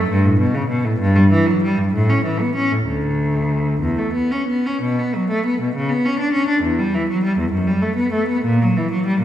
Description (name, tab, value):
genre	classical, baroque-style suite movement for unaccompanied cello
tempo	56-69 BPM (dotted quarters)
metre	6/8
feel	rubato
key	unclear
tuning	A4 = 439 Hz
part	clear cello	solo	0.0-9.2 s	D2 to D4	-16 LUFS	equal	none
room	wet recital hall reverb, RT60 1.6 s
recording	recorded in a church or concert hall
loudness	-16 LUFS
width	side -11 dB against mid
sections	0.0-4.8 A section; 4.8-9.2 A section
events	none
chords	none